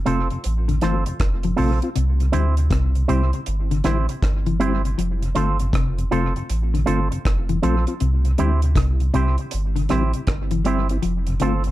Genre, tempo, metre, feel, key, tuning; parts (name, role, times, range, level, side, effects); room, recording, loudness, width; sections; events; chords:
roots reggae; 79 BPM; 4/4; swing 64% on 16ths; C major; A4 = 440 Hz
warm sub bass; bass; 0.0-11.7 s; F1 to D2; -21 LUFS; equal
electric guitar with an envelope filter; accompaniment; 0.1-11.6 s; C4 to C5; -26 LUFS; right 5 dB; tape echo
mellow tonewheel organ; accompaniment; 0.1-11.7 s; F2 to F4; -28 LUFS; left 1 dB; chorus vibrato, slow rotary speaker, dub echo
mellow electric guitar; arpeggios; 0.1-11.6 s; C3 to G3; -26 LUFS; left 5 dB
deep reggae drum kit; drums; 0.1-11.7 s; hi-hat, kick drum, rim click; -25 LUFS; equal; dub echo
light reverb; dark, warm production; -18 LUFS; side -15 dB against mid
0.0-11.7 A section
0.0 F; 2.0 C; 5.0 F; 8.0 C; 11.0 F